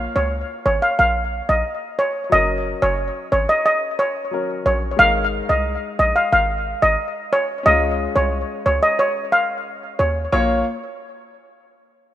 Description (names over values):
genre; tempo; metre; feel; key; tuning
dancehall; 90 BPM; 4/4; straight; Bb minor; A4 = 441 Hz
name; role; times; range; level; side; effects
clear baby grand piano; accompaniment; 0.0-10.6 s; Gb3 to Db5; -27 LUFS; left 4 dB; none
short 808-style bass; bass; 0.0-10.6 s; Gb1 to Eb2; -24 LUFS; equal; none
steel pan; melody; 0.2-10.6 s; Db5 to F5; -18 LUFS; equal; ping-pong delay
room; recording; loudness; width
moderate lush hall reverb, RT60 2.9 s; rough home demo mix; -17 LUFS; side -12 dB against mid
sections
0.0-10.3 A section; 10.3-12.1 B section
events
none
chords
0.0 Bbm; 2.3 Gb; 5.0 Absus2; 7.7 Db; 10.3 Bbm